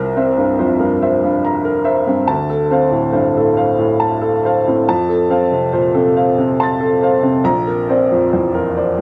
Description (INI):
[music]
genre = neoclassical minimalist piano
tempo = 70 BPM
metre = 3/4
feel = rubato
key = F major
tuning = A4 = 443 Hz
[part]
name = clear upright piano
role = solo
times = 0.0-9.0 s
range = Bb1 to A6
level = -15 LUFS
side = equal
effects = cassette tape, tape echo
[sound]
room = moderate small room ambience, RT60 0.5 s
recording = home recording on cassette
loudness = -15 LUFS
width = mono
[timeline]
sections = 0.0-9.0 A section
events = none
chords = 0.0 C7; 2.3 Dm7; 4.9 F; 7.5 Bbadd9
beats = 0.58 1.44 | 2.30 3.15 4.01 | 4.87 5.74 6.60 | 7.46 8.33